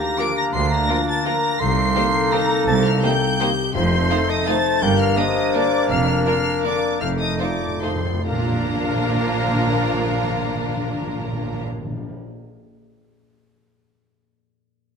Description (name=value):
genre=classical, orchestral ballroom waltz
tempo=131-180 BPM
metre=3/4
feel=rubato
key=Bb major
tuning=A4 = 439 Hz
part: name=warm studio violin section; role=melody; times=0.0-11.6 s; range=Bb5 to D7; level=-27 LUFS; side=left 1 dB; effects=none
part: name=mellow silver concert flute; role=second line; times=0.0-11.6 s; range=C5 to D6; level=-26 LUFS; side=left 1 dB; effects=none
part: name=warm clarinet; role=second line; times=0.0-11.6 s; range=D4 to Eb4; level=-30 LUFS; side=left 1 dB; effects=none
part: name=mellow bassoon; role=accompaniment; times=0.0-11.6 s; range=A3 to Bb3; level=-28 LUFS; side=right 1 dB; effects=none
part: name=dark French horn section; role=sustained chords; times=0.0-11.6 s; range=D4 to C5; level=-26 LUFS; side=left 4 dB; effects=none
part: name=concert harp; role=arpeggios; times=0.0-12.5 s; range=F2 to Bb5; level=-30 LUFS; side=left 11 dB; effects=none
part: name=rich symphonic violin section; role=second line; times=0.2-11.6 s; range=D4 to C5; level=-30 LUFS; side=left 1 dB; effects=none
part: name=dark studio viola section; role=accompaniment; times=0.2-11.6 s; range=A3 to F4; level=-30 LUFS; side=right 1 dB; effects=none
part: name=warm trombone section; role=sustained chords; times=0.2-11.6 s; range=D3 to Bb3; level=-32 LUFS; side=right 5 dB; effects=none
part: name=rich studio double bass section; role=bass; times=0.5-11.6 s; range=F1 to D2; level=-27 LUFS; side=right 4 dB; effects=none
part: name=warm studio cello section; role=bass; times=0.5-11.6 s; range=C2 to Bb2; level=-27 LUFS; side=right 4 dB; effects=none
part: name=timpani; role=percussion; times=3.8-4.3, 7.0-12.2 s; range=F2 to Bb2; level=-28 LUFS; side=left 1 dB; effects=none
room=moderate scoring stage reverb, RT60 1.6 s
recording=none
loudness=-18 LUFS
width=side -6 dB against mid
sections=0.0-8.3 A section; 8.3-10.9 B section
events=slowing down 5.4-8.3; timpani fill 7.0-8.3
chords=0.0 Bb/D; 1.6 Cm7; 3.7 F7; 4.8 Gm; 5.9 Bb/F; 7.0 F7; 8.3 Bb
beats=0.19 | 0.54 0.89 1.26 | 1.60 1.95 2.32 | 2.67 3.03 3.40 | 3.75 4.10 4.47 | 4.82 5.17 5.55 | 5.90 6.26 6.64 | 7.01 7.40 7.83 | 8.26 8.69 9.14 | 9.57 10.00 10.45